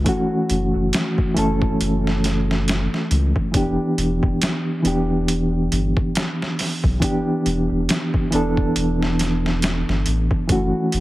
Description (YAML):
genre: trip hop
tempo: 69 BPM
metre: 4/4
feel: swing 58% on 16ths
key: E dorian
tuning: A4 = 440 Hz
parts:
  - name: reed electric piano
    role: accompaniment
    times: 0.0-11.0 s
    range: E3 to A4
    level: -20 LUFS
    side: equal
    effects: tremolo, tape echo
  - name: round analog bass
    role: bass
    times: 0.0-11.0 s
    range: E1 to C#2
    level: -23 LUFS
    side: equal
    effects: none
  - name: boom bap sampler-style drum kit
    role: drums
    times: 0.1-11.0 s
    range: hi-hat, kick drum, snare drum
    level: -23 LUFS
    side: equal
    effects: overdrive
room: light reverb, digital ambience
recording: heavily compressed radio sound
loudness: -18 LUFS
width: side -17 dB against mid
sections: 0.0-11.0 A section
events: none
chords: 0.0 F#m7; 3.5 Em7; 10.5 F#m7